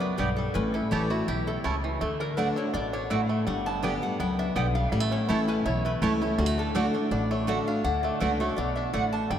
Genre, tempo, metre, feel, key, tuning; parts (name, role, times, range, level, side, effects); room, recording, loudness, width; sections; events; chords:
bluegrass; 164 BPM; 4/4; swing 53% on 8ths; D major; A4 = 437 Hz
lap resonator guitar; second line; 0.0-9.4 s; E4 to A5; -33 LUFS; left 2 dB
picked steel-string acoustic guitar; accompaniment; 0.0-9.4 s; E2 to G4; -28 LUFS; left 1 dB
bluegrass banjo; arpeggios; 0.0-9.4 s; D3 to G4; -33 LUFS; right 2 dB
upright bass; bass; 0.0-9.4 s; G1 to D2; -32 LUFS; equal
mandolin; stabs; 0.2-9.0 s; A3 to A5; -33 LUFS; right 4 dB
wet cathedral reverb, RT60 5.8 s; in a vast, echoing space; -24 LUFS; side -9 dB against mid
0.0-7.8 A section; 7.8-9.4 A section
resonator guitar played with a steel bar solo 0.0-9.4
0.0 G; 0.6 A; 2.0 D; 3.5 G; 4.9 A; 6.4 D